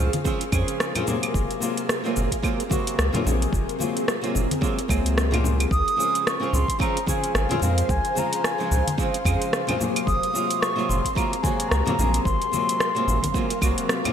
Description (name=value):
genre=sunset chillout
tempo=110 BPM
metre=4/4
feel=swing 57% on 16ths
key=Db major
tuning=A4 = 439 Hz
part: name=flamenco guitar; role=accompaniment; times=0.0-14.1 s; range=C3 to Bb4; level=-27 LUFS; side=moving between left 5 dB and right 5 dB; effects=auto-pan, ping-pong delay
part: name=ethereal airy pad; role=sustained chords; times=0.0-14.1 s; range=Gb3 to F5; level=-31 LUFS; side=equal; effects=ensemble chorus, built-in reverb, tremolo
part: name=round analog bass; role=bass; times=0.0-13.7 s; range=Gb1 to F2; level=-23 LUFS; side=equal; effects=none
part: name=smooth R&B drum kit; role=drums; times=0.1-14.1 s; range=claves, hi-hat, rim click, shaker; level=-28 LUFS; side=right 1 dB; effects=gated reverb
part: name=congas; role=percussion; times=0.1-14.1 s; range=none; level=-31 LUFS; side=left 2 dB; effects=none
part: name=electronic kick drum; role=drums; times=0.3-13.7 s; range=none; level=-27 LUFS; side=equal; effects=none
part: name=baroque flute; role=melody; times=5.7-13.8 s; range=F5 to Eb6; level=-26 LUFS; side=equal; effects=ping-pong delay
part: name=wind-like tuned noise texture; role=texture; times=7.3-14.1 s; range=C5 to C6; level=-36 LUFS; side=equal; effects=none
room=moderate lush hall reverb, RT60 2.3 s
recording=bright 1980s-style digital production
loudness=-21 LUFS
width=side -8 dB against mid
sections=0.0-14.1 A section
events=none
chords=0.0 Dbmaj7; 1.3 Gbmaj9#11; 5.7 Dbmaj7; 10.1 Gbmaj9#11; 12.3 Ab13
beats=0.26 0.80 | 1.35 1.89 2.44 2.98 | 3.53 4.08 4.62 5.17 | 5.71 6.26 6.80 7.35 | 7.89 8.44 8.98 9.53 | 10.08 10.62 11.17 11.71 | 12.26 12.80 13.35 13.89